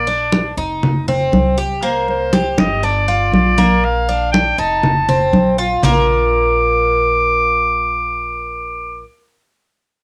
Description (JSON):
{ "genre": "latin, Cuban son and guajira", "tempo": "120 BPM", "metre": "4/4", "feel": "straight", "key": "Bb major", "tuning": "A4 = 445 Hz", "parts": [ { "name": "bright clarinet", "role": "melody", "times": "0.0-9.0 s", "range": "C5 to D6", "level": "-20 LUFS", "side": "equal", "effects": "none" }, { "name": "Cuban tres", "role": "arpeggios", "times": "0.0-9.0 s", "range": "Bb3 to Bb4", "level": "-21 LUFS", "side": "equal", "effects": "cassette tape" }, { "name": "upright bass", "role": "bass", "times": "0.0-9.0 s", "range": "F1 to C2", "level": "-25 LUFS", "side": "equal", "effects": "none" }, { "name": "congas", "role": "percussion", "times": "0.1-5.9 s", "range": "none", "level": "-19 LUFS", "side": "equal", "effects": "none" } ], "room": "moderate studio reverb, RT60 0.6 s", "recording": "home recording on cassette", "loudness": "-16 LUFS", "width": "mono", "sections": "0.0-5.8 A section; 5.8-9.8 B section", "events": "none", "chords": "0.0 Bb; 0.8 F5; 1.8 C5; 2.8 Gm7; 3.8 Bb; 4.8 F7; 5.8 Bb" }